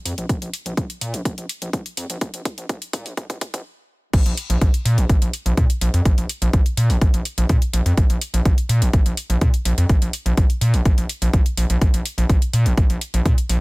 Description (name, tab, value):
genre	melodic techno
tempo	125 BPM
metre	4/4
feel	straight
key	unclear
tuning	A4 = 440 Hz
part	gritty driven synth bass	bass	0.1-13.6 s	Bb1 to Bb2	-20 LUFS	equal	sidechain pumping
part	house drum kit	drums	0.1-13.6 s	crash cymbal, hi-hat	-29 LUFS	left 1 dB	none
part	electronic kick drum	drums	0.3-13.4 s	none	-17 LUFS	equal	none
room	digital ambience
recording	high-pass filter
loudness	-17 LUFS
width	side -24 dB against mid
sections	0.0-4.1 A section; 4.1-13.6 B section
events	build-up 0.0-4.1; drum fill 0.3-3.7; stop 3.7-4.1; drop 4.1-13.6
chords	none